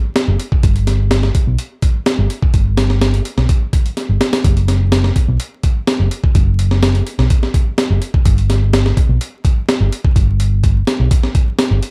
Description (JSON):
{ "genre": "breakbeat, breaks", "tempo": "126 BPM", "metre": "4/4", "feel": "straight", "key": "unclear", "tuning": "A4 = 439 Hz", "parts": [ { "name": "breakbeat sampler-style drum kit", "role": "drums", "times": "0.2-11.9 s", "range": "hi-hat, kick drum, snare drum", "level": "-17 LUFS", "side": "equal", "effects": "none" }, { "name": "picked electric bass", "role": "bass", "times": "0.3-11.8 s", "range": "F#1 to B1", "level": "-16 LUFS", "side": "equal", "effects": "none" } ], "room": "little or no reverb", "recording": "vinyl crackle", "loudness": "-15 LUFS", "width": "mono", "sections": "0.0-11.9 A section", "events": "none", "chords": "none", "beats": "0.16 | 0.64 1.11 1.59 2.06 | 2.54 3.02 3.49 3.97 | 4.45 4.92 5.40 5.87 | 6.35 6.83 7.30 7.78 | 8.26 8.73 9.21 9.68 | 10.16 10.64 11.11 11.59" }